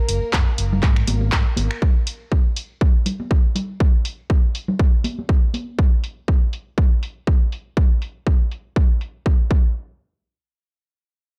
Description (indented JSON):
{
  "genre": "filtered disco house",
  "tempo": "121 BPM",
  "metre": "4/4",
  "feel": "swing 55% on 16ths",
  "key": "unclear",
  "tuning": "A4 = 439 Hz",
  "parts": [
    { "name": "dark studio string section", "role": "sustained chords", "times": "0.0-1.8 s", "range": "Bb3 to Bb4", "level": "-34 LUFS", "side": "equal", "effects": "sidechain pumping, low-pass filter" },
    { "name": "fingered electric bass", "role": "bass", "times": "0.1-1.7 s", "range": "Gb1 to Ab2", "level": "-24 LUFS", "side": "equal", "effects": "sidechain pumping, low-pass filter" },
    { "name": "house drum kit", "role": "drums", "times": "0.1-9.1 s", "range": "finger snaps, handclaps, hi-hat", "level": "-29 LUFS", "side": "equal", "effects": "overdrive, sidechain pumping on cymbals, low-pass filter on cymbals, sidechain pumping on hats, low-pass filter on hats, low-pass filter on snare, low-pass filter on room" },
    { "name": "tambourine and congas", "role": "percussion", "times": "0.1-5.8 s", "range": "none", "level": "-28 LUFS", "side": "equal", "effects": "sidechain pumping on perc, low-pass filter on perc" },
    { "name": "electronic kick drum", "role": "drums", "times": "0.3-9.6 s", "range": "none", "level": "-19 LUFS", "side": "equal", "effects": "overdrive" }
  ],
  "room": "little or no reverb",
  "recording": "none",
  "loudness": "-20 LUFS",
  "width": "mono",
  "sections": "0.0-9.8 A section; 9.8-11.4 B section",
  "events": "none",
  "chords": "0.0 Gb; 0.8 Absus2; 1.8 N.C.",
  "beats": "0.33 0.83 1.32 | 1.82 2.32 2.81 3.31 | 3.80 4.30 4.79 5.29 | 5.79 6.28 6.78 7.28 | 7.77 8.27 8.76 9.26"
}